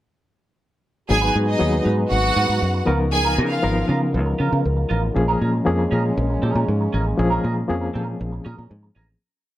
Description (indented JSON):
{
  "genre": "disco",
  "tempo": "118 BPM",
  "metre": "4/4",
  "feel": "straight",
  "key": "unclear",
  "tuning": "A4 = 440 Hz",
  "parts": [
    { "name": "rich studio violin section", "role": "second line", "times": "1.1-3.9 s", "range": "Eb4 to Ab5", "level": "-22 LUFS", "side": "right 1 dB", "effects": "none" },
    { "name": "barky reed electric piano", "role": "accompaniment", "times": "1.1-9.2 s", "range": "F3 to Bb4", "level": "-24 LUFS", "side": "left 2 dB", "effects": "overdrive, tremolo" },
    { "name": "electric guitar at the edge of break-up", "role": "accompaniment", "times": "1.1-9.1 s", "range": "Cb4 to Cb5", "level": "-28 LUFS", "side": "right 4 dB", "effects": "wah" },
    { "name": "mellow French horn section", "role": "sustained chords", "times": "1.1-9.2 s", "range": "Db3 to Cb5", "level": "-28 LUFS", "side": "equal", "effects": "none" },
    { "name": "fingered electric bass", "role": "bass", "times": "1.1-9.1 s", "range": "Ab1 to Db3", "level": "-22 LUFS", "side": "equal", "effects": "none" }
  ],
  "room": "light reverb, studio ambience",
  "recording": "none",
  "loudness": "-18 LUFS",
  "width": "side -14 dB against mid",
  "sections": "1.1-9.2 pre-chorus",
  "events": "fade-out 7.2-9.2",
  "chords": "1.1 Abm7; 2.9 Db13; 5.2 Bbm7"
}